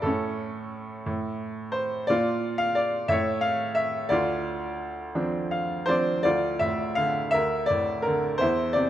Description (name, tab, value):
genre	classical, lyrical solo piano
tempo	55-60 BPM (dotted quarters)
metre	6/8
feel	rubato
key	D minor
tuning	A4 = 440 Hz
part	bright baby grand piano	solo	0.0-8.9 s	D2 to F5	-24 LUFS	equal	none
room	moderate concert hall reverb, RT60 2.0 s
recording	none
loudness	-24 LUFS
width	side -12 dB against mid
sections	0.0-6.2 A section; 6.2-8.9 B section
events	grand piano fill 5.2-6.2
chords	0.0 A; 2.1 Bb; 3.1 A; 4.1 Dm7; 6.2 Dm; 7.3 Bbmaj7#11/D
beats	| 0.05 1.08 | 2.09 3.10 | 4.11 5.16 | 6.25 7.34 | 8.41